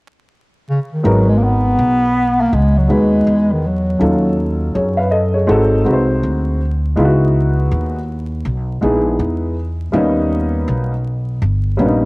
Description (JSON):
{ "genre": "hip hop", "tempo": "81 BPM", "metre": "4/4", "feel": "swing 62% on 16ths", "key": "G# minor", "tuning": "A4 = 440 Hz", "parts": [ { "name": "mellow bass clarinet", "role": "melody", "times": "0.7-4.4 s", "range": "C#3 to B3", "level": "-15 LUFS", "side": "equal", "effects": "cassette tape" }, { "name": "dark upright piano", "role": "accompaniment", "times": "1.0-12.1 s", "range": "F#3 to E#5", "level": "-16 LUFS", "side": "equal", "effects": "cassette tape" }, { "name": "upright bass", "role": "bass", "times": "1.0-12.1 s", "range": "G1 to F#2", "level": "-17 LUFS", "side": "equal", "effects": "none" } ], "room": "moderate spring reverb, RT60 1.9 s, studio ambience", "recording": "home recording on cassette, vinyl crackle", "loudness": "-13 LUFS", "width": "side -24 dB against mid", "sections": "0.0-1.0 A section; 1.0-12.1 B section", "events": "none", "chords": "0.0 N.C.; 1.0 G#m9; 4.0 D#m7b5; 5.5 G#7b9; 7.0 C#m11; 9.9 D#7b13", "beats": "0.30 | 1.04 1.78 2.52 3.27 | 4.01 4.75 5.49 6.23 | 6.97 7.71 8.45 9.19 | 9.93 10.67 11.41" }